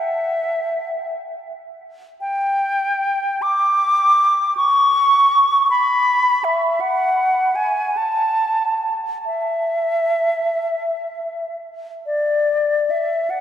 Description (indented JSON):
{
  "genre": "classical, free, expressive piece for unaccompanied flute",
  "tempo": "34-58 BPM (dotted quarters)",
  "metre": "6/8",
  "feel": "rubato",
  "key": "unclear",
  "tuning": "A4 = 444 Hz",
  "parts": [
    { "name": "silver concert flute", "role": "solo", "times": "0.0-13.4 s", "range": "D5 to D6", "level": "-16 LUFS", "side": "equal", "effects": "none" }
  ],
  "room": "wet cathedral reverb, RT60 5.0 s",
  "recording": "heard from further back in the room",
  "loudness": "-16 LUFS",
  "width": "side -10 dB against mid",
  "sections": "0.0-12.1 A section; 12.1-13.4 B section",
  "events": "none",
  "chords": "none",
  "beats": "| 0.00 1.14 | 2.22 3.42 | 4.57 5.70 | 6.79 7.97 | 9.26 10.57 | 12.07 13.31"
}